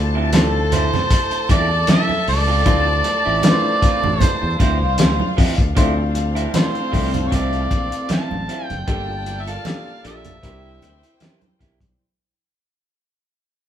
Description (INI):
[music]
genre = lush 1970s-style soul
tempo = 77 BPM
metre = 4/4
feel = swing 54% on 16ths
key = D minor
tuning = A4 = 439 Hz
[part]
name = warm studio string section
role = second line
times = 0.0-12.0 s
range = C4 to A5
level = -26 LUFS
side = left 5 dB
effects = none
[part]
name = warm concert grand piano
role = accompaniment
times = 0.0-12.0 s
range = F3 to C5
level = -27 LUFS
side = left 2 dB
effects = none
[part]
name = fingered electric bass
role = bass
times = 0.0-11.9 s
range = F#1 to F2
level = -22 LUFS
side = equal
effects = none
[part]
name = electric guitar through a small old amp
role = riff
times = 0.1-11.8 s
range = F3 to A4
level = -29 LUFS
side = right 6 dB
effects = none
[part]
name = overdriven harmonica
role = melody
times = 0.3-11.2 s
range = A4 to A5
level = -22 LUFS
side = right 2 dB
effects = none
[part]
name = cloth-damped thuddy drum kit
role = drums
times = 0.3-12.0 s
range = hi-hat, kick drum, snare drum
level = -19 LUFS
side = equal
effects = none
[part]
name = congas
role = percussion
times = 0.3-12.0 s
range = none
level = -27 LUFS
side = right 5 dB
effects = none
[sound]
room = moderate large studio reverb, RT60 0.9 s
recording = band playing live in one room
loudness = -16 LUFS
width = side -10 dB against mid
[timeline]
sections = 0.0-5.8 A section; 5.8-12.0 B section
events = fade-out 5.8-12.0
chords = 0.0 Dm9; 8.9 Gm7; 10.4 C7